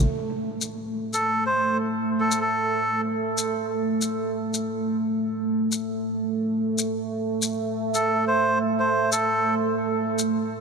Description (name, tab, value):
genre	deep dubstep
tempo	141 BPM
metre	4/4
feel	swing 54% on 16ths, half-time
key	A minor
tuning	A4 = 442 Hz
part	deep dark ambient pad	sustained chords	0.0-10.6 s	A3	-25 LUFS	right 2 dB	chorus, built-in reverb
part	shaker	drums	0.6-10.3 s	none	-28 LUFS	left 5 dB	none
part	melodica	melody	1.1-3.0, 7.9-9.5 s	A4 to C5	-25 LUFS	equal	dub echo
room	moderate huge ambient reverb, RT60 4.5 s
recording	none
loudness	-22 LUFS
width	side -5 dB against mid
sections	0.1-10.6 A section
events	none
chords	none